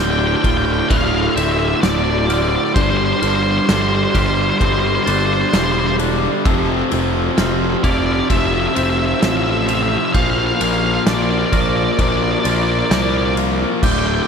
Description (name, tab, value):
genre	post-rock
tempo	65 BPM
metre	4/4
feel	straight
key	unclear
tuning	A4 = 440 Hz
part	octave-fuzz lead guitar	melody	0.0-14.3 s	C5 to G5	-21 LUFS	equal	distortion, digital delay
part	glockenspiel with soft plastic mallets	arpeggios	0.0-14.3 s	D6 to F7	-31 LUFS	right 3 dB	digital delay
part	twangy electric guitar	arpeggios	0.0-14.3 s	D2 to Bb4	-29 LUFS	left 3 dB	none
part	cranked stack guitar	riff	0.0-14.3 s	D2 to Bb3	-22 LUFS	left 16 dB	overdrive
part	thick fuzz guitar	riff	0.0-14.3 s	D2 to Bb3	-22 LUFS	right 15 dB	distortion
part	fuzz picked electric bass	bass	0.0-14.2 s	D1 to C2	-21 LUFS	equal	overdrive
part	loose indie drum kit	drums	0.4-14.0 s	crash cymbal, kick drum, ride cymbal, snare drum	-21 LUFS	equal	none
room	light reverb, small room ambience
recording	none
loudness	-14 LUFS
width	side -6 dB against mid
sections	0.0-14.3 A section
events	none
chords	0.0 Dm7; 2.8 G7sus4; 6.5 Fmaj7; 10.1 Bbmaj7